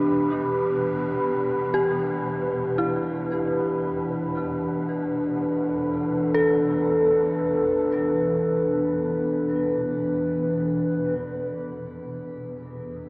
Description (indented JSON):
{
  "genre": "dark ambient drone",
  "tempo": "free time",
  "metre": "none",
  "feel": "none",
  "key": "E minor",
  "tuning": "A4 = 441 Hz",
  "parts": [
    { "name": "dark analog pad", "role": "sustained chords", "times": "0.0-13.1 s", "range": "E3 to B4", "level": "-24 LUFS", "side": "equal", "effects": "chorus, phaser, shimmer reverb" },
    { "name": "dark detuned synth bell", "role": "arpeggios", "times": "0.0-13.1 s", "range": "D4 to A4", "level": "-28 LUFS", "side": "equal", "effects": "chorus, diffuse ambient delay, shimmer reverb" },
    { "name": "swarming drone", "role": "drone", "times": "0.0-13.1 s", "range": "E2 to B2", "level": "-33 LUFS", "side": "equal", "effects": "built-in reverb" },
    { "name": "bubbling stepped-filter texture", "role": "texture", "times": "0.0-11.2 s", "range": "B4", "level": "-33 LUFS", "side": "equal", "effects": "chorus, built-in reverb, shimmer reverb" }
  ],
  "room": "wet cathedral reverb, RT60 6.0 s",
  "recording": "in a vast, echoing space, small speaker sound",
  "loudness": "-21 LUFS",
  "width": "side -27 dB against mid",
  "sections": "0.0-11.2 A section; 11.2-13.1 A section",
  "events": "none",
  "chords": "0.0 Em; 11.2 E5",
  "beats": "free time"
}